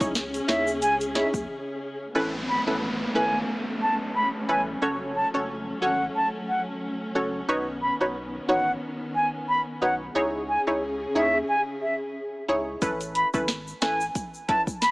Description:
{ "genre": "dancehall", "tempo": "90 BPM", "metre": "4/4", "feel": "swing 56% on 16ths", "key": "unclear", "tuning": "A4 = 440 Hz", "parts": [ { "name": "punchy chord stab", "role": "accompaniment", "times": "0.0-14.7 s", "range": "C#4 to C#5", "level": "-27 LUFS", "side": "equal", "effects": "chorus" }, { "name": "warm symphonic string section", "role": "sustained chords", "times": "0.0-12.8 s", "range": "C#3 to G#4", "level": "-31 LUFS", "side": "equal", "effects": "sidechain pumping" }, { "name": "saturated sub bass", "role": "bass", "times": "0.0-14.1 s", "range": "F#1 to D#2", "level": "-42 LUFS", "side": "equal", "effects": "none" }, { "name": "afro-pop drum kit", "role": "drums", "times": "0.0-1.5, 12.8-14.9 s", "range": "hi-hat, kick drum, snare drum", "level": "-30 LUFS", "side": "equal", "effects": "none" }, { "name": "tube shaker", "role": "percussion", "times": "0.0-1.5, 12.8-14.9 s", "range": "none", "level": "-41 LUFS", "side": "left 2 dB", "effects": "none" }, { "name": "concert flute", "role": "melody", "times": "0.5-14.9 s", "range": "E5 to B5", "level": "-26 LUFS", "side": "equal", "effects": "none" }, { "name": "downlifter", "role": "sound effects", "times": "2.2-7.5 s", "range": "none", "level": "-35 LUFS", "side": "equal", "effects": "none" } ], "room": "light reverb, small room ambience", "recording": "small speaker sound", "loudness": "-24 LUFS", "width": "side -23 dB against mid", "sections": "0.0-2.2 A section; 2.2-12.8 B section; 12.8-14.9 A section", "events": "break 1.5-2.2", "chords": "0.0 C#madd9; 2.2 Aadd9; 4.8 F#m; 7.5 Badd9; 10.2 C#madd9; 12.8 Aadd9" }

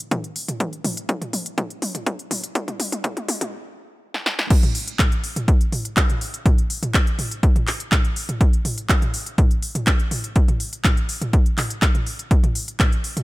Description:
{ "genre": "techno", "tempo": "123 BPM", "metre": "4/4", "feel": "straight", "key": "none", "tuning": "none", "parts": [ { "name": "techno drum kit", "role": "drums", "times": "0.0-13.2 s", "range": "crash cymbal, handclaps, hi-hat, snare drum, toms", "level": "-24 LUFS", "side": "equal", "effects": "none" }, { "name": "electronic kick drum", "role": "drums", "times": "0.1-12.9 s", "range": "none", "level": "-18 LUFS", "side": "equal", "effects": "high-pass filter on kick" } ], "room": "digital ambience", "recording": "high-pass filter", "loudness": "-19 LUFS", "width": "side -19 dB against mid", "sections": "0.0-4.5 A section; 4.5-13.2 B section", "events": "build-up 0.0-4.5; drum fill 0.0-3.5, 4.1-4.5; filter sweep 0.0-4.5; drop 4.5-13.2", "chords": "none" }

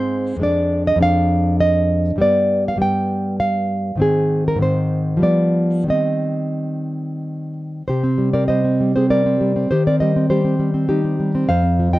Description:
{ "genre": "romantic piece for solo classical guitar", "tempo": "100 BPM", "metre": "3/4", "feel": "rubato", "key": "C minor", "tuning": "A4 = 439 Hz", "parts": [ { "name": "nylon-string guitar", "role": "solo", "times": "0.0-12.0 s", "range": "F2 to G5", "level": "-16 LUFS", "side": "equal", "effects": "none" } ], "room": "light reverb", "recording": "close, detailed microphones", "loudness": "-16 LUFS", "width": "side -17 dB against mid", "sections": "0.0-7.9 A section; 7.9-12.0 A section", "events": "none", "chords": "0.4 Ddim/F; 2.2 G; 4.0 Ab; 5.2 G7/F; 5.9 Cm/Eb; 7.9 C5; 9.7 Cm/Eb; 11.5 F5" }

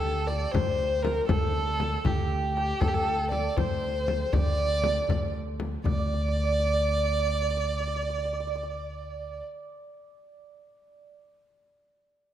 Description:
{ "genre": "Persian modal ensemble", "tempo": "79 BPM (dotted quarters)", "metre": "6/8", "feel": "straight", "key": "unclear", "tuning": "A4 = 439 Hz", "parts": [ { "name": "dark violin", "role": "melody", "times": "0.0-9.4 s", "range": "G4 to D5", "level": "-29 LUFS", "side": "right 1 dB", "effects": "none" }, { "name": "santur", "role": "second line", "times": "0.0-11.1 s", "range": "G4 to D5", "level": "-35 LUFS", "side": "right 2 dB", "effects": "none" }, { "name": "upright bass", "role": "bass", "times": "0.0-9.4 s", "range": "D2", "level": "-30 LUFS", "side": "equal", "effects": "none" }, { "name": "tombak", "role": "percussion", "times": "0.3-6.1 s", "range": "none", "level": "-34 LUFS", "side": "left 3 dB", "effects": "none" }, { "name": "frame drum", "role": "percussion", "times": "0.5-6.1 s", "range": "none", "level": "-32 LUFS", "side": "left 3 dB", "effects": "none" } ], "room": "moderate concert hall reverb, RT60 1.7 s", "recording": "none", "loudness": "-25 LUFS", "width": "side -10 dB against mid", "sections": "0.0-5.9 A section; 5.9-8.9 B section", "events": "none", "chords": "none" }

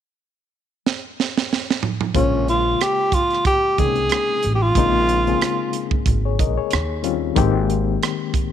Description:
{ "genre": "R&B, neo-soul", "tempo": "92 BPM", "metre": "4/4", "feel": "swing 56% on 16ths", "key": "Bb dorian", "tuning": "A4 = 440 Hz", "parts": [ { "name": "tight funk drum kit", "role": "drums", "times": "0.9-8.5 s", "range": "hi-hat, kick drum, rim click, snare drum, toms", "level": "-22 LUFS", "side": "right 4 dB", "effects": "none" }, { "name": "barky reed electric piano", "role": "accompaniment", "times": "2.1-8.5 s", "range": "C3 to Eb5", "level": "-23 LUFS", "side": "left 14 dB", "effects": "medium tremolo" }, { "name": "breathy tenor saxophone", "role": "melody", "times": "2.2-5.9 s", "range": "Db4 to Ab4", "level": "-19 LUFS", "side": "right 1 dB", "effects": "slapback echo" }, { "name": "upright bass", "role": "bass", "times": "2.2-7.9 s", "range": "Ab1 to Eb2", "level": "-22 LUFS", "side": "right 1 dB", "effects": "none" } ], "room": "light reverb, studio ambience", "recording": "1960s-style stereo", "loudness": "-17 LUFS", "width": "side -9 dB against mid", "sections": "0.0-2.1 A section; 2.1-8.5 B section", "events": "drum fill 0.8-2.1", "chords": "0.0 N.C.; 2.1 Bbm9; 6.7 Eb13; 7.4 Abmaj9" }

